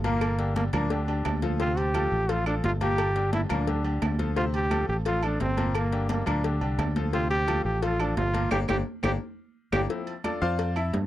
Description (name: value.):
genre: latin, salsa.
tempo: 174 BPM.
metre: 4/4.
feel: straight.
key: unclear.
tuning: A4 = 440 Hz.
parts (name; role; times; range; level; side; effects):
bright grand piano; accompaniment; 0.0-10.9 s; Bb2 to F5; -32 LUFS; left 4 dB; none.
fingered electric bass; bass; 0.0-11.1 s; G1 to G2; -28 LUFS; equal; none.
agogo bells and timbales; percussion; 0.0-11.1 s; none; -37 LUFS; right 7 dB; none.
congas; percussion; 0.0-11.1 s; none; -35 LUFS; equal; none.
cowbell; percussion; 0.0-11.1 s; none; -37 LUFS; left 8 dB; none.
bright trombone; melody; 0.1-9.8 s; Bb3 to G4; -28 LUFS; equal; none.
claves; percussion; 0.2-10.9 s; none; -38 LUFS; right 8 dB; none.
room: little or no reverb.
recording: dry, close 1970s-style studio recording, tape saturation.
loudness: -24 LUFS.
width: side -14 dB against mid.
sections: 0.0-9.9 A section; 9.9-11.1 B section.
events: band accent 8.5-9.9; drum fill 9.0-9.9; grand piano solo 9.9-11.1.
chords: 0.2 Gm; 1.6 Dm7; 3.0 Gm; 9.9 Dm7.